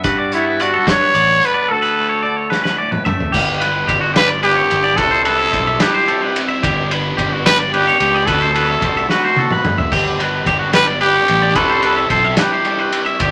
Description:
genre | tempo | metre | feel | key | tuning
math rock and midwest emo | 73 BPM (dotted quarters) | 6/8 | straight | unclear | A4 = 440 Hz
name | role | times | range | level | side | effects
twangy electric guitar | accompaniment | 0.0-5.0 s | D2 to F#4 | -28 LUFS | equal | none
twangy electric guitar | arpeggios | 0.0-13.3 s | F#4 to E5 | -21 LUFS | equal | none
growling fingered electric bass | bass | 0.0-13.3 s | G1 to G2 | -25 LUFS | equal | overdrive
loose indie drum kit | drums | 0.0-13.3 s | crash cymbal, hi-hat, kick drum, ride cymbal, snare drum, toms | -23 LUFS | equal | none
growling trumpet | melody | 0.3-13.0 s | E4 to C#5 | -18 LUFS | equal | none
raw garage guitar | riff | 3.3-13.3 s | G2 to G4 | -26 LUFS | equal | overdrive, phaser
room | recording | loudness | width
moderate studio reverb, RT60 0.6 s | none | -15 LUFS | mono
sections
0.0-3.3 A section; 3.3-13.3 B section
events
break 1.7-3.3; drum fill 2.5-3.3, 9.1-9.9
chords
0.1 Gmaj9; 1.7 Dmaj7; 3.3 G; 5.0 Cmaj7; 6.6 G; 8.3 D9; 9.9 G; 11.6 Cmaj7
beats
| 0.05 0.88 | 1.70 2.52 | 3.35 4.17 | 4.99 5.81 | 6.63 7.45 | 8.28 9.10 | 9.92 10.74 | 11.56 12.39 | 13.21

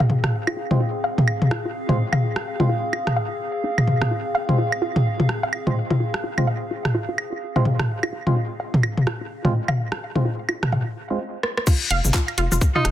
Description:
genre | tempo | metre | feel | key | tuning
minimal techno | 127 BPM | 4/4 | swing 60% on 16ths | F minor | A4 = 440 Hz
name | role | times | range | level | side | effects
resonant blip pluck | riff | 0.0-12.8 s | C4 to F5 | -27 LUFS | equal | chorus, sidechain pumping, tape echo
minimal click drum kit | percussion | 0.0-12.9 s | claves, rim click, toms | -21 LUFS | equal | soft clipping on snare
warbly tape-like pad | texture | 0.0-11.2 s | C4 to F5 | -29 LUFS | equal | chorus, built-in reverb, phaser, sidechain pumping
percussive organ stab | stabs | 0.7-11.2 s | Ab3 to F4 | -29 LUFS | right 2 dB | wide subtle chorus, dub echo
garage drum kit | drums | 11.4-12.9 s | cabasa, crash cymbal, handclaps, hi-hat, rim click | -24 LUFS | equal | overdrive
electronic kick drum | drums | 11.7-12.7 s | none | -18 LUFS | equal | overdrive
rubbery square bass | bass | 11.9-12.9 s | F1 to Ab1 | -22 LUFS | equal | sidechain pumping
edgy alto saxophone | melody | 12.8-12.9 s | Eb4 | -21 LUFS | equal | vintage 12-bit sampler grit
room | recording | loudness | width
moderate small room reverb, RT60 0.5 s | dense, heavily limited modern master | -20 LUFS | side -12 dB against mid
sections
0.0-11.7 A section; 11.7-12.9 B section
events
drum fill 11.4; drop 11.7-12.9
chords
0.0 Fm; 11.7 N.C.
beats
| 0.33 0.80 1.27 1.75 | 2.22 2.69 3.17 3.64 | 4.11 4.58 5.05 5.53 | 6.00 6.47 6.95 7.42 | 7.89 8.36 8.83 9.31 | 9.78 10.25 10.72 11.20 | 11.67 12.14 12.61

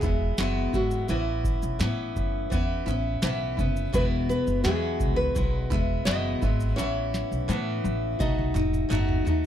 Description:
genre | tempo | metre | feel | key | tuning
acoustic pop | 84 BPM | 4/4 | straight | E major | A4 = 444 Hz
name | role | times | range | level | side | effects
nylon-string guitar | melody | 0.0-8.9 s | E4 to D#5 | -32 LUFS | right 1 dB | none
picked steel-string acoustic guitar | accompaniment | 0.0-9.5 s | E2 to F#4 | -29 LUFS | left 2 dB | none
upright bass | bass | 0.0-9.4 s | E1 to A2 | -28 LUFS | equal | none
booming analog drum machine | drums | 0.0-9.4 s | kick drum, shaker, snare drum, toms | -29 LUFS | equal | none
group handclap | percussion | 0.0-9.1 s | none | -42 LUFS | right 8 dB | none
room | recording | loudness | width
studio reverb | dry, close 1970s-style studio recording | -24 LUFS | side -10 dB against mid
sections
0.0-9.5 A section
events
drum fill 6.8-9.5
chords
0.0 Eadd9; 1.1 Aadd9; 3.9 Eadd9; 6.8 Aadd9; 8.2 B7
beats
0.38 | 1.09 1.80 2.51 3.22 | 3.93 4.64 5.36 6.07 | 6.78 7.49 8.20 8.91

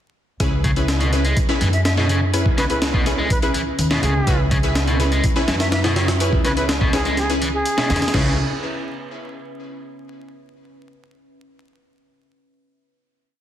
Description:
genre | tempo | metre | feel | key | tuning
breakbeat, breaks | 124 BPM | 4/4 | straight | C# minor | A4 = 438 Hz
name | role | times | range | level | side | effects
deep dark ambient pad | sustained chords | 2.3-8.4 s | C#4 to E5 | -31 LUFS | left 1 dB | chorus, built-in reverb, vintage 12-bit sampler grit, sidechain pumping
orchestra-hit-like synth stab | stabs | 0.4-8.3 s | C#4 to D#5 | -25 LUFS | left 1 dB | built-in reverb, vintage 12-bit sampler grit, digital delay
upright bass | bass | 0.4-8.4 s | C#2 to F#2 | -22 LUFS | equal | none
breakbeat sampler-style drum kit | drums | 0.4-8.3 s | crash cymbal, hi-hat, kick drum, snare drum | -21 LUFS | equal | none
biting overdriven guitar | riff | 0.6-8.4 s | B2 to G#3 | -26 LUFS | equal | tube saturation, digital delay
bright reedy silver concert flute | melody | 1.7-8.1 s | G#4 to E5 | -27 LUFS | right 1 dB | AM radio sound, digital delay
room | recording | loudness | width
light reverb, digital ambience | dense, heavily limited modern master, vinyl crackle | -16 LUFS | side -11 dB against mid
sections
0.4-8.1 drop; 8.1-10.1 final chord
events
drop 0.4-8.1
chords
0.4 C#m7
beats
| 0.40 0.88 1.37 1.85 | 2.34 2.82 3.30 3.79 | 4.27 4.75 5.24 5.72 | 6.21 6.69 7.17 7.66 | 8.14

